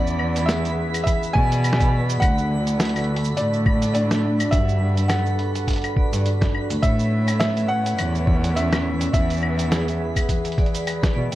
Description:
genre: folktronica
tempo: 104 BPM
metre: 4/4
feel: swing 56% on 16ths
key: unclear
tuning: A4 = 440 Hz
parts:
  - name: felt-muted upright piano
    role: melody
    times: 0.0-10.8 s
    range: D5 to G#5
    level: -27 LUFS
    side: equal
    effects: ping-pong delay
  - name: vibraphone with medium hard mallets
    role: second line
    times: 0.0-11.3 s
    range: C#4 to F#5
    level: -31 LUFS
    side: right 2 dB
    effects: ping-pong delay
  - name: hand-pumped harmonium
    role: sustained chords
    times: 0.0-11.3 s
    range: D3 to E5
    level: -35 LUFS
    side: right 1 dB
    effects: none
  - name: concert harp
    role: arpeggios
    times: 0.0-11.3 s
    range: E2 to F#4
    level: -31 LUFS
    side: left 3 dB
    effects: ping-pong delay
  - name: dark cello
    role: bass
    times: 0.0-11.3 s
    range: D2 to B2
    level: -22 LUFS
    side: equal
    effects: tube saturation
  - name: twinkling granular texture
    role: texture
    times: 0.0-11.3 s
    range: B5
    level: -35 LUFS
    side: right 3 dB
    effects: built-in reverb
  - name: lo-fi sampler-style drum kit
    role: drums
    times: 0.1-11.3 s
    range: cabasa, claves, hi-hat, snare drum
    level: -27 LUFS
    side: equal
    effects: none
  - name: electronic kick drum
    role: drums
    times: 1.1-11.1 s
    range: none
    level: -20 LUFS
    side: equal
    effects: none
room: small room reverb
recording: dark, warm production, vinyl crackle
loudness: -18 LUFS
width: side -15 dB against mid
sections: 0.0-11.3 A section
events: none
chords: 0.0 E; 2.2 D; 4.5 Gmaj7; 6.8 Aadd9; 9.1 E

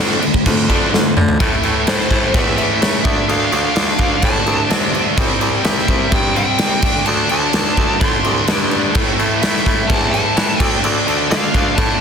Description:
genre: hard rock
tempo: 127 BPM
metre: 4/4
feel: straight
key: unclear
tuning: A4 = 440 Hz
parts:
  - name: overdriven electric guitar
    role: riff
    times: 0.0-12.0 s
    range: A2 to D4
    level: -20 LUFS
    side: left 15 dB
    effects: none
  - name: tight distorted guitar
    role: riff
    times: 0.0-12.0 s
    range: A2 to D4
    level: -21 LUFS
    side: right 12 dB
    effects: distortion
  - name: raspy baritone saxophone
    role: bass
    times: 0.0-12.0 s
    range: C2 to E3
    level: -21 LUFS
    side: equal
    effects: none
  - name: big rock drum kit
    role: drums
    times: 0.2-11.9 s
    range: crash cymbal, kick drum, snare drum, toms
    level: -17 LUFS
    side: right 1 dB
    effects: none
  - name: dark smooth lead guitar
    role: melody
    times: 1.9-12.0 s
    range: C5 to C6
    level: -22 LUFS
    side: left 1 dB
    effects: overdrive, tape echo
room: studio reverb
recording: dense, heavily limited modern master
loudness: -13 LUFS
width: side -6 dB against mid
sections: 0.0-1.4 A section; 1.4-12.0 B section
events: drum fill 0.9-1.4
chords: 0.0 Dm/F; 1.4 Am; 3.1 Dm; 5.2 C; 6.8 D5; 8.9 A5; 10.6 Dm

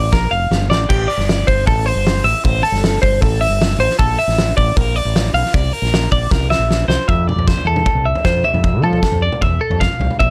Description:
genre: math rock and midwest emo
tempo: 155 BPM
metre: 4/4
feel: straight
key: F major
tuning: A4 = 440 Hz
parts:
  - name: twelve-string electric guitar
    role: arpeggios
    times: 0.0-10.3 s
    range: G4 to F5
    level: -20 LUFS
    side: equal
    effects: none
  - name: growling fingered electric bass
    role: bass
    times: 0.0-10.3 s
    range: F1 to F3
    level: -20 LUFS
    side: equal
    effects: overdrive
  - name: loose indie drum kit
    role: drums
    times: 0.1-10.3 s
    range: crash cymbal, hi-hat, kick drum, snare drum, toms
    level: -20 LUFS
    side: equal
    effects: none
room: small room ambience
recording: none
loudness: -16 LUFS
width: mono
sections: 0.0-7.1 A section; 7.1-10.3 B section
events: drum fill 0.1-0.9, 6.3-7.1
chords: 0.0 Bbmaj7; 0.9 Am7; 4.0 Bbmaj7; 5.5 C9; 7.1 Fmaj7

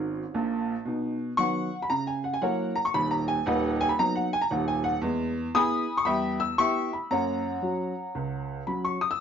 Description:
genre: jazz, stride piano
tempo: 115 BPM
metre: 4/4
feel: swing 66% on 8ths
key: B major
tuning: A4 = 436 Hz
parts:
  - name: clear upright piano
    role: solo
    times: 0.0-9.2 s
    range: D#1 to E6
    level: -25 LUFS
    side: equal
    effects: none
room: moderate studio reverb, RT60 0.5 s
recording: nothing above 7.5 kHz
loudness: -25 LUFS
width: side -7 dB against mid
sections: 0.9-9.2 A section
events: upright piano fill 0.0-0.9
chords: 0.0 F#; 0.9 B; 1.9 F#7/C#; 2.9 B/D#; 5.0 E; 6.1 Em; 7.1 F#

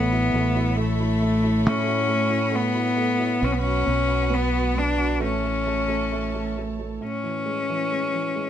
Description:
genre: acoustic folk-pop ballad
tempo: 67 BPM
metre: 4/4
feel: straight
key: A major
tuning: A4 = 440 Hz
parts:
  - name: clear cello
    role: melody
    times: 0.0-8.5 s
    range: A3 to D4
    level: -23 LUFS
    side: left 3 dB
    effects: none
  - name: warm baby grand piano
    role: accompaniment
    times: 0.0-8.5 s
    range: A2 to F#4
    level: -29 LUFS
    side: right 5 dB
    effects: none
  - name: rich studio string section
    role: sustained chords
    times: 0.0-7.0 s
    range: E4 to B5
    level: -34 LUFS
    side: equal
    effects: none
  - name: fingered electric bass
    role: bass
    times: 0.0-7.0 s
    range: A1 to A2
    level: -26 LUFS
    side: right 1 dB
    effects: none
room: light reverb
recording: close, detailed microphones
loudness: -21 LUFS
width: side -10 dB against mid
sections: 0.0-7.0 A section; 7.0-8.5 B section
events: none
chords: 0.0 Aadd9; 3.4 B5; 5.2 A; 7.0 Amaj7

